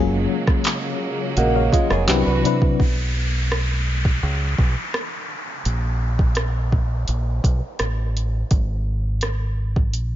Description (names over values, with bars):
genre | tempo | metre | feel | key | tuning
contemporary R&B | 84 BPM | 4/4 | straight | F# major | A4 = 440 Hz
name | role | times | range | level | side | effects
FM electric piano with auto-pan | accompaniment | 0.0-2.8 s | F#3 to F#5 | -22 LUFS | left 4 dB | none
warm studio string section | sustained chords | 0.0-2.8 s | C#3 to B4 | -28 LUFS | right 3 dB | sidechain pumping
deep dub fingered electric bass | bass | 0.0-10.2 s | E#1 to C3 | -22 LUFS | equal | none
smooth R&B drum kit | drums | 0.5-10.1 s | handclaps, hi-hat, kick drum, rim click | -21 LUFS | equal | overdrive
nylon-string guitar | arpeggios | 1.4-2.8 s | G#3 to B4 | -24 LUFS | right 4 dB | none
downlifter | sound effects | 2.8-8.5 s | none | -30 LUFS | equal | none
room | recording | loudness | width
digital ambience | nothing above 7.5 kHz | -18 LUFS | side -12 dB against mid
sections
0.0-2.8 A section; 2.8-10.2 B section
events
none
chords
0.0 F#maj9; 2.1 Cmaj9#11; 2.8 N.C.; 8.5 G#sus2